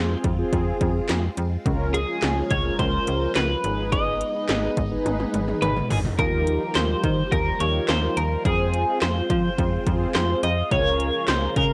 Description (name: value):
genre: synth-pop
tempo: 106 BPM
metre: 4/4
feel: straight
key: Eb mixolydian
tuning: A4 = 439 Hz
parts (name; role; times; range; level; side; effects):
- mellow synth brass; accompaniment; 0.0-11.5 s; C4 to C5; -31 LUFS; equal; chorus, plate reverb
- phased string machine; sustained chords; 0.0-11.7 s; Db3 to F4; -34 LUFS; equal; ensemble chorus, phaser, plate reverb
- slap-like FM bass; bass; 0.0-11.7 s; Ab1 to F3; -28 LUFS; equal; none
- 80s electronic pad drums; drums; 0.2-11.7 s; handclaps, hi-hat, kick drum, snare drum, toms; -28 LUFS; equal; gated reverb on snare and toms, cassette tape
- twelve-string electric guitar; melody; 1.9-11.7 s; Ab4 to Eb5; -28 LUFS; equal; analog chorus, cassette tape, analog delay, plate reverb
room: moderate studio reverb, RT60 0.5 s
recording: home recording on cassette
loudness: -23 LUFS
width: mono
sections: 0.0-6.2 A section; 6.2-11.7 B section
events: drum fill 5.1-6.2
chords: 0.0 Fm; 1.7 Db6; 3.6 Abm; 6.2 Ebadd9; 8.5 Fm; 10.7 Db6